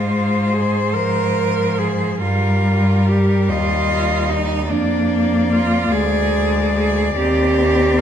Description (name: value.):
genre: classical, lyrical piece for cello ensemble.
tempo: 48 BPM (dotted quarters).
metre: 12/8.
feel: rubato.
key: unclear.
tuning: A4 = 440 Hz.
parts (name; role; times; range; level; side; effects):
rich cello; melody; 0.0-8.0 s; Bb4 to Eb5; -23 LUFS; left 8 dB; none.
clear cello; second line; 0.0-8.0 s; D4 to Bb4; -21 LUFS; right 6 dB; none.
rich cello; accompaniment; 0.0-8.0 s; F3 to C4; -21 LUFS; left 3 dB; none.
rich cello; bass; 0.0-8.0 s; D2 to Ab2; -20 LUFS; right 1 dB; none.
room: wet recital hall reverb, RT60 1.3 s.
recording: none.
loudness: -15 LUFS.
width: side -9 dB against mid.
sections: 0.0-8.0 A section.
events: none.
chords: 0.0 Fm/Ab; 2.2 Eb/G; 4.7 Ddim/F; 7.2 Cm/Eb.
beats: 0.97 | 2.23 3.49 4.71 5.93 | 7.17.